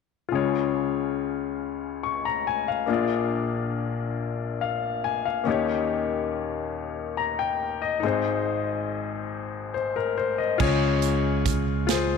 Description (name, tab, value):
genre	slow gospel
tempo	47 BPM (dotted quarters)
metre	6/8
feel	straight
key	Db major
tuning	A4 = 441 Hz
part	clear baby grand piano	accompaniment	0.3-12.2 s	Ab1 to Db6	-24 LUFS	left 7 dB	none
part	fingered electric bass	bass	10.6-12.2 s	Db2	-25 LUFS	right 3 dB	none
part	natural country drum kit	drums	10.6-12.1 s	crash cymbal, hi-hat, kick drum, snare drum	-27 LUFS	right 6 dB	none
room	moderate echo chamber reverb, RT60 2.3 s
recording	1960s-style stereo with parts hard left and right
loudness	-24 LUFS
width	side -5 dB against mid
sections	0.3-10.6 A section; 10.6-12.2 B section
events	none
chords	0.3 Db; 2.9 Bb7; 5.5 Eb7; 8.0 Ab; 10.6 Db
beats	| 0.32 1.61 | 2.89 4.18 | 5.46 6.75 | 8.03 9.32 | 10.60 11.88